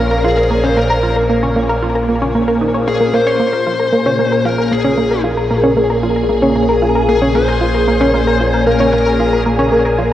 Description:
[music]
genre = ambient, sequencer-driven space music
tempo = 114 BPM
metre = 4/4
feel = straight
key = Bb minor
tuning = A4 = 440 Hz
[part]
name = bluesy overdriven lead guitar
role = melody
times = 0.0-9.4 s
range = Ab4 to C5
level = -19 LUFS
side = left 4 dB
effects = distortion, cassette tape, ping-pong delay
[part]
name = phased string machine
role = sustained chords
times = 0.0-10.1 s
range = Bb2 to C5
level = -16 LUFS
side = equal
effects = ensemble chorus, phaser
[part]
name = analog pluck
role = riff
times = 0.0-10.0 s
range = Bb3 to Db5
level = -16 LUFS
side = equal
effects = chorus, ping-pong delay
[part]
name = round analog bass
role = bass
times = 0.0-10.1 s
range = Bb1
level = -22 LUFS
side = equal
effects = transformer saturation
[part]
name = twinkling granular texture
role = texture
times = 0.1-3.4 s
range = Db4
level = -29 LUFS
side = equal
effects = built-in reverb
[sound]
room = wet spring reverb, RT60 2.3 s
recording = home recording on cassette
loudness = -12 LUFS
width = side -12 dB against mid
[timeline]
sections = 0.0-3.4 A section; 3.4-10.1 B section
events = none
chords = 0.0 Bbm7

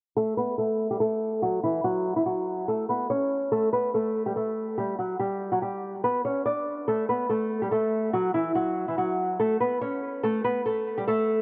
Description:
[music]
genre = hip hop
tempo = 143 BPM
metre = 4/4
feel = half-time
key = F# phrygian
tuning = A4 = 439 Hz
[part]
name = nylon-string guitar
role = melody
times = 0.2-11.4 s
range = E3 to D5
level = -27 LUFS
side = equal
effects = low-pass filter, digital delay
[sound]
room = light reverb, small room ambience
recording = none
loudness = -27 LUFS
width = mono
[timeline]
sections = 0.2-11.4 A section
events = filter sweep on nylon-string guitar 0.2-11.4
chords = 0.2 F#m; 3.5 G5; 6.9 F#m; 10.2 Asus2

